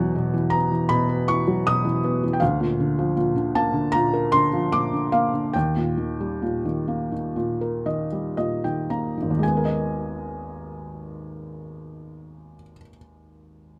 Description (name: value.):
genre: classical, lyrical solo piano.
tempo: 55-81 BPM.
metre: 4/4.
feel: rubato.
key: G# minor.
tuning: A4 = 440 Hz.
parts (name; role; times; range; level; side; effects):
felt-muted upright piano; solo; 0.0-13.8 s; G#1 to D#6; -24 LUFS; equal; none.
room: light reverb.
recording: close, detailed microphones.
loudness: -23 LUFS.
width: mono.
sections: 0.0-9.4 A section; 9.4-13.6 B section.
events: slowing down 2.4-9.4; felt piano fill 7.3-9.4.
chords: 0.0 Esus2; 2.4 A#/D; 5.5 D#; 9.4 G#madd9.